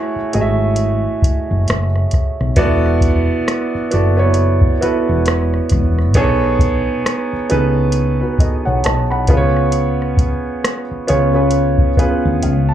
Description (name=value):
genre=R&B, neo-soul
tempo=67 BPM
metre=4/4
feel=swing 58% on 16ths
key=unclear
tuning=A4 = 439 Hz
part: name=dark grand piano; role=accompaniment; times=0.0-12.7 s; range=A3 to B5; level=-17 LUFS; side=right 2 dB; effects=plate reverb, slapback echo
part: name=woody fretless electric bass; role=bass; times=0.2-12.7 s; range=E1 to D2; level=-17 LUFS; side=left 1 dB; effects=none
part: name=soft vintage rhythm box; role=drums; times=0.3-12.7 s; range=hi-hat, kick drum, rim click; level=-16 LUFS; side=equal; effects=none
room=light reverb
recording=live gig heard through the venue's PA, club reverb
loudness=-13 LUFS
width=side -10 dB against mid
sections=0.0-12.7 A section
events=grand piano fill 12.0-12.7; drum fill 12.4-12.7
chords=0.0 F#m9; 2.6 E9sus4; 6.1 B13; 9.3 C#7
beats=0.77 1.67 | 2.56 3.46 4.36 5.25 | 6.15 7.04 7.94 8.83 | 9.73 10.62 11.52 12.42